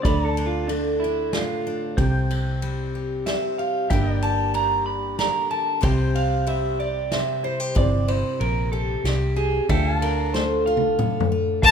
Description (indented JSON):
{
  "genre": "honky-tonk and classic country",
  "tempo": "93 BPM",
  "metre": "3/4",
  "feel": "straight",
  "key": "D minor",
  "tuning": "A4 = 440 Hz",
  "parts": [
    { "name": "electric guitar through a small old amp", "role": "second line", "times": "0.0-11.3 s", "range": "D4 to B5", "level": "-26 LUFS", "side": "right 3 dB", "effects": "warbly pitch drift" },
    { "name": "dark upright piano", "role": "accompaniment", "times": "0.0-11.6 s", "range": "Bb3 to A5", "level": "-33 LUFS", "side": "right 5 dB", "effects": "none" },
    { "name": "picked steel-string acoustic guitar", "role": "accompaniment", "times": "0.0-11.7 s", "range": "A2 to C5", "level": "-27 LUFS", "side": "left 2 dB", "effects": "none" },
    { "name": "pedal steel guitar", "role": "sustained chords", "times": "0.0-11.7 s", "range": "C5 to A5", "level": "-32 LUFS", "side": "left 2 dB", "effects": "none" },
    { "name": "vintage muted fingered electric bass", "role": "bass", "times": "0.0-11.7 s", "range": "G1 to D2", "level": "-25 LUFS", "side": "equal", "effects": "none" },
    { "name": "unplugged drum kit", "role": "drums", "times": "0.0-11.7 s", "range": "kick drum, ride cymbal, snare drum, toms", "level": "-27 LUFS", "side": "left 1 dB", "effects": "none" },
    { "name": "clear fiddle", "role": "melody", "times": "11.6-11.7 s", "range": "A5", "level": "-8 LUFS", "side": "left 4 dB", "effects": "none" }
  ],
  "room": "light reverb",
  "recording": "minimal, uncompressed stereo recording",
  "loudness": "-20 LUFS",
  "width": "side -7 dB against mid",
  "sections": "0.0-11.6 A section",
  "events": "clean electric guitar solo 0.0-11.6; drum fill 10.3-11.6",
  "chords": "0.0 Dm; 2.0 C5; 3.9 Gm; 5.8 C; 9.7 Dm"
}